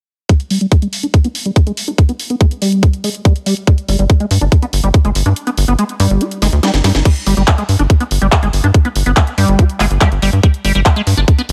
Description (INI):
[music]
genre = psychedelic trance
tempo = 142 BPM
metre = 4/4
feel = straight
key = unclear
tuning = A4 = 439 Hz
[part]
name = liquid acid bass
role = riff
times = 0.3-11.4 s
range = G3 to G4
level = -20 LUFS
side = equal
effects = chorus, sidechain pumping, tape echo
[part]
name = drum and bass drum kit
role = drums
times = 0.3-11.5 s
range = crash cymbal, handclaps, hi-hat, snare drum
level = -22 LUFS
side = equal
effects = overdrive
[part]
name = electronic kick drum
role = drums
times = 0.3-11.4 s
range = none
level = -12 LUFS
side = equal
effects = overdrive
[part]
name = tight sequencer bass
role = bass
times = 3.9-11.5 s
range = G1 to G2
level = -15 LUFS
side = equal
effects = none
[sound]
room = little or no reverb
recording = none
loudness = -13 LUFS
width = mono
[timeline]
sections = 0.3-7.1 A section; 7.1-11.5 B section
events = filter sweep on acid bass 0.3-7.1; kick drops out 5.4-7.1; drum fill 6.4-7.1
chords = 0.3 G5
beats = | 0.29 0.72 1.14 1.56 | 1.98 2.41 2.83 3.25 | 3.67 4.10 4.52 4.94 | 5.36 5.79 6.21 6.63 | 7.05 7.48 7.90 8.32 | 8.74 9.17 9.59 10.01 | 10.43 10.86 11.28